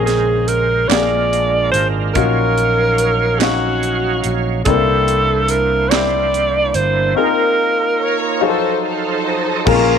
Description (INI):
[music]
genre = slow gospel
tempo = 48 BPM (dotted quarters)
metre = 6/8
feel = straight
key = unclear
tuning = A4 = 440 Hz
[part]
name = clear alto saxophone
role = melody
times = 0.0-8.4 s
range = Gb4 to D5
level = -16 LUFS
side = right 1 dB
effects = none
[part]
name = warm grand piano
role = accompaniment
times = 0.0-10.0 s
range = Bb2 to F5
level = -20 LUFS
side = left 12 dB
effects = none
[part]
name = overdriven tonewheel organ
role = sustained chords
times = 0.0-10.0 s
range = Db3 to F5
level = -22 LUFS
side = right 13 dB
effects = slow rotary speaker, chorus vibrato
[part]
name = fingered electric bass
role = bass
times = 0.0-10.0 s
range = G1 to C2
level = -20 LUFS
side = right 1 dB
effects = none
[part]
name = crisp fusion drum kit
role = drums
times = 0.1-9.9 s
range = crash cymbal, hi-hat, kick drum, snare drum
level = -21 LUFS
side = right 4 dB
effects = none
[part]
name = group handclap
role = percussion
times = 0.9-6.3 s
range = none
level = -24 LUFS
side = right 15 dB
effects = none
[part]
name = rich studio string section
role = melody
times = 8.0-10.0 s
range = Db4 to Db5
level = -19 LUFS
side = left 1 dB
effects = slapback echo
[sound]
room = light reverb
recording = 1960s-style stereo with parts hard left and right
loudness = -13 LUFS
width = side -7 dB against mid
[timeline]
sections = 0.0-9.7 A section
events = tonewheel organ fill 8.4-9.7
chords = 0.0 Bbm9; 0.9 Bb7; 2.2 Ebm9/Bb; 4.7 C9; 7.2 F7sus4; 8.4 F7b9